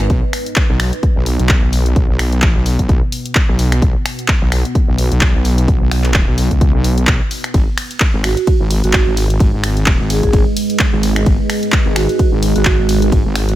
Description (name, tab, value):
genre	bass house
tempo	129 BPM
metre	4/4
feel	swing 57% on 16ths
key	unclear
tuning	A4 = 440 Hz
part	deep dark ambient pad	sustained chords	0.0-13.6 s	G#3 to F#5	-23 LUFS	right 2 dB	chorus, built-in reverb, sidechain pumping
part	wobble bass	bass	0.0-13.6 s	G#1 to C#2	-15 LUFS	equal	chorus, overdrive, sidechain pumping
part	house drum kit	drums	0.0-13.6 s	finger snaps, handclaps, hi-hat, ride cymbal	-20 LUFS	equal	studio reverb
part	electronic kick drum	drums	0.1-13.2 s	none	-14 LUFS	equal	studio reverb
part	vibraphone with medium mallets	melody	8.2-13.6 s	F#4 to G#4	-21 LUFS	right 5 dB	digital delay
room	digital ambience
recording	none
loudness	-12 LUFS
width	side -14 dB against mid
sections	0.0-13.6 A section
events	none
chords	0.1 B; 7.5 G#m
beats	| 0.10 0.56 1.03 1.50 | 1.96 2.42 2.89 3.36 | 3.82 4.29 4.75 5.22 | 5.68 6.15 6.61 7.08 | 7.54 8.01 8.47 8.94 | 9.40 9.87 10.33 10.80 | 11.26 11.73 12.19 12.66 | 13.12